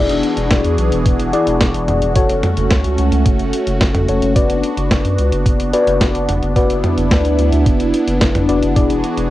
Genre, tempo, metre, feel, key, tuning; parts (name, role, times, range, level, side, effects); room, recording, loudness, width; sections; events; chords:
synthwave; 109 BPM; 4/4; straight; B dorian; A4 = 440 Hz
phased analog pad; sustained chords; 0.0-9.3 s; E3 to G#4; -18 LUFS; equal; phaser, chorus, cassette tape, plate reverb
mellow FM electric piano; stabs; 0.0-9.3 s; E4 to D5; -20 LUFS; left 2 dB; chorus, phaser, cassette tape, tape echo, plate reverb
round analog bass; bass; 0.0-9.3 s; E1 to F#2; -19 LUFS; equal; sidechain pumping
clean 12-bit digital drum machine; drums; 0.1-9.3 s; hi-hat, snare drum, toms; -20 LUFS; equal; cassette tape
electronic kick drum; drums; 0.5-8.9 s; -16 LUFS; equal; cassette tape
moderate studio reverb, RT60 0.5 s; home recording on cassette; -13 LUFS; side -15 dB against mid
0.0-9.3 A section
0.0 E7; 2.2 F#m; 4.4 Bm/F#; 8.8 E7